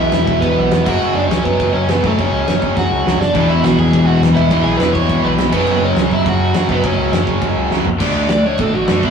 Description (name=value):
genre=punk rock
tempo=206 BPM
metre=4/4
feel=straight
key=unclear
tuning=A4 = 439 Hz
part: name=crunchy overdriven guitar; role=melody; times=0.0-9.1 s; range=A3 to C#6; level=-19 LUFS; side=right 1 dB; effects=none
part: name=distorted electric guitar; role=riff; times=0.0-9.1 s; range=E2 to D4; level=-21 LUFS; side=right 5 dB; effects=overdrive
part: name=sludgy distorted guitar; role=riff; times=0.0-9.1 s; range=E2 to D4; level=-20 LUFS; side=left 6 dB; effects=overdrive
part: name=overdriven picked electric bass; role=bass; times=0.0-9.1 s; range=E1 to B2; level=-21 LUFS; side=equal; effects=none
part: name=loose indie drum kit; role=drums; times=0.1-9.1 s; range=crash cymbal, kick drum, snare drum, toms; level=-19 LUFS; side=right 1 dB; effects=none
part: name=high-gain distorted guitar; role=riff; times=3.3-9.1 s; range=E2 to D4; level=-19 LUFS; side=equal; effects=distortion
room=moderate stone room reverb, RT60 1.1 s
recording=rough rehearsal-room recording, warm saturation, small room ambience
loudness=-12 LUFS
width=side -6 dB against mid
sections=0.0-8.0 A section; 8.0-9.1 B section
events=drum fill 2.8-3.3, 7.7; overdriven electric guitar solo 8.0-9.1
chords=0.0 E5; 0.9 F#5; 3.3 E; 5.5 F#5; 8.0 D